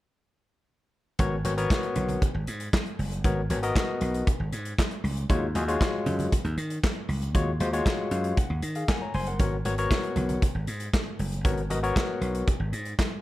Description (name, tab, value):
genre	early-eighties boogie funk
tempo	117 BPM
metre	4/4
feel	straight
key	G# minor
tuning	A4 = 440 Hz
part	barky tine electric piano	accompaniment	1.2-12.5 s	G#3 to B#5	-29 LUFS	left 3 dB	overdrive
part	slap bass	bass	1.2-12.9 s	F#1 to D#3	-29 LUFS	equal	none
part	modern studio drum kit	drums	1.2-13.1 s	handclaps, hi-hat, kick drum, snare drum	-28 LUFS	equal	none
part	congas	percussion	1.2-13.1 s	none	-38 LUFS	right 2 dB	none
room	studio ambience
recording	dark, warm production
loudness	-25 LUFS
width	side -16 dB against mid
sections	1.2-13.2 A section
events	tine electric piano fill 7.9-9.4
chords	1.2 G#m11; 5.3 D#m11; 9.4 G#m11